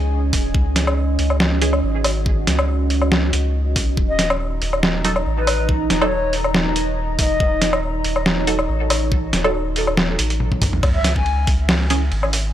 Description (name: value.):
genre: deep dubstep.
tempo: 140 BPM.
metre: 4/4.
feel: swing 53% on 16ths, half-time.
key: unclear.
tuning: A4 = 440 Hz.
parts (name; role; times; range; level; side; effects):
deep dark ambient pad; sustained chords; 0.0-10.8 s; C#4 to A#5; -25 LUFS; right 2 dB; chorus, built-in reverb.
soft dub sub bass; bass; 0.0-12.5 s; D#1 to C#2; -21 LUFS; equal; none.
electronic kick drum; drums; 0.3-11.6 s; none; -20 LUFS; equal; studio reverb.
trip hop sampler-style drum kit; drums; 0.3-12.4 s; hi-hat, ride cymbal, snare drum, toms, woodblock; -20 LUFS; equal; studio reverb.
filtered dub chord stab; stabs; 1.6-1.7, 5.0-12.0 s; E3 to A4; -27 LUFS; right 3 dB; phaser, dub echo.
breathy bright low ney; melody; 4.1-7.8, 10.9-11.5 s; B4 to G#5; -26 LUFS; left 4 dB; vintage 12-bit sampler grit, dub echo.
room: little or no reverb.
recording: dry, gritty hardware recording, transformer saturation.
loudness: -16 LUFS.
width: side -11 dB against mid.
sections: 0.0-10.8 A section; 10.8-12.5 A section.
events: drop 0.0-10.8, 10.8-12.5; drum fill 10.4-10.8.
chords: 0.0 C#5; 4.0 D#dim; 10.8 C#m.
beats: 0.12 | 0.55 0.97 1.40 1.83 | 2.26 2.69 3.12 3.54 | 3.97 4.40 4.83 5.26 | 5.69 6.12 6.54 6.97 | 7.40 7.83 8.26 8.69 | 9.12 9.54 9.97 10.40 | 10.83 11.26 11.69 12.12.